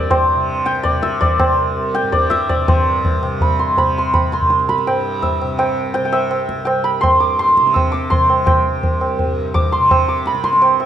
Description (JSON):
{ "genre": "indian classical, Hindustani", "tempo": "166 BPM", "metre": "4/4", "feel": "straight", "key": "C raga hamsadhwani", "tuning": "A4 = 440 Hz", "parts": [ { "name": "santur", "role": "melody", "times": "0.0-10.9 s", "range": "C5 to E6", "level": "-16 LUFS", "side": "right 1 dB", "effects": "none" }, { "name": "tanpura", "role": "drone", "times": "0.0-10.9 s", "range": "C2 to C3", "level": "-24 LUFS", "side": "equal", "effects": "none" }, { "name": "tabla", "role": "percussion", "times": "0.1-10.9 s", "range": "none", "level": "-18 LUFS", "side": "equal", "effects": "none" } ], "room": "moderate recital hall reverb, RT60 1.6 s", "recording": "nothing above 11.0 kHz", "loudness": "-14 LUFS", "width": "side -10 dB against mid", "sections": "0.0-2.7 A section; 2.7-10.9 B section", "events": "speeding up 0.0-10.9", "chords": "none" }